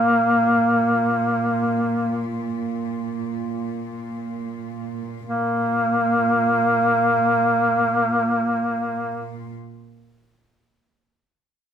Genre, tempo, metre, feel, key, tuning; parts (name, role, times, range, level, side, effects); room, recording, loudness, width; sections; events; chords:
caucasian folk, Caucasian lament; free time; A4 = 440 Hz
warm duduk; melody; 0.0-9.5 s; Bb3; -18 LUFS; equal
warm studio cello section; drone; 0.0-9.5 s; Bb2; -27 LUFS; right 2 dB
moderate stone room reverb, RT60 1.1 s; band playing live in one room; -19 LUFS; side -8 dB against mid
0.0-5.3 A section; 5.3-8.9 B section
slowing down 0.0-5.3